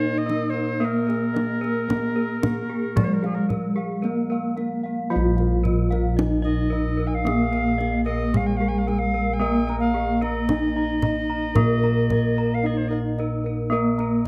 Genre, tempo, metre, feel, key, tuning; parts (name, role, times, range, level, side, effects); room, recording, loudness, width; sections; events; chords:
Javanese gamelan; 56 BPM; 4/4; straight; Bb slendro; A4 = 440 Hz
gamelan-type bronze metallophone; melody; 0.0-14.3 s; Ab3-40c to Bb4; -28 LUFS; equal; slapback echo
mellow alto recorder; second line; 0.0-13.0 s; Ab4-41c to Ab5-36c; -32 LUFS; equal
gamelan-type bronze metallophone; accompaniment; 0.0-14.3 s; F3+20c to Bb3; -31 LUFS; equal
gamelan-type bossed gongs; arpeggios; 0.0-14.3 s; Ab4-40c to Bb5; -36 LUFS; equal
gamelan-type bronze metallophone; arpeggios; 0.0-14.2 s; Ab4-40c to Bb5; -37 LUFS; equal
gamelan-type bossed gongs; bass; 0.0-14.3 s; Bb1 to Bb4; -29 LUFS; equal
kendang; percussion; 0.3-14.3 s; -28 LUFS; equal
light reverb; close, detailed microphones; -23 LUFS; mono
0.0-5.1 A section; 5.1-14.3 A section